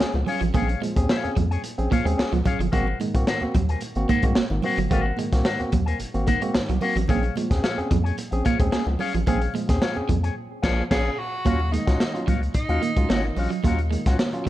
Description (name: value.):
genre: funk.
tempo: 110 BPM.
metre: 4/4.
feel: straight.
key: Eb dorian.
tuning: A4 = 441 Hz.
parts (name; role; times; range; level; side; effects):
electric guitar with an envelope filter; accompaniment; 0.0-14.5 s; Gb4 to Ab5; -30 LUFS; left 6 dB; none.
electric guitar at the edge of break-up; riff; 0.0-14.5 s; F3 to Bb3; -29 LUFS; right 8 dB; none.
barky tine electric piano; stabs; 0.0-14.5 s; Ab2 to Ab4; -29 LUFS; right 1 dB; tape echo.
rubbery square bass; bass; 0.0-14.5 s; G1 to F2; -25 LUFS; equal; none.
crunchy breakbeat drum kit; drums; 0.0-14.5 s; crash cymbal, hi-hat, kick drum, snare drum; -25 LUFS; left 1 dB; none.
congas; percussion; 0.0-14.5 s; none; -33 LUFS; right 4 dB; none.
warm tenor saxophone; melody; 10.9-13.3 s; Eb4 to Ab4; -30 LUFS; right 1 dB; tape echo.
room: light reverb.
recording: dark, warm production.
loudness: -20 LUFS.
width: side -14 dB against mid.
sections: 0.0-11.5 A section; 11.5-14.5 B section.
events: band accent 10.4-11.5.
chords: 0.0 Bbm7; 2.7 Ab9; 7.1 Bbm7; 11.5 Ebm9.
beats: 0.00 | 0.55 1.09 1.64 2.18 | 2.73 3.27 3.82 4.36 | 4.91 5.46 6.00 6.55 | 7.09 7.64 8.18 8.73 | 9.27 9.82 10.37 10.91 | 11.46 12.00 12.55 13.10 | 13.64 14.19.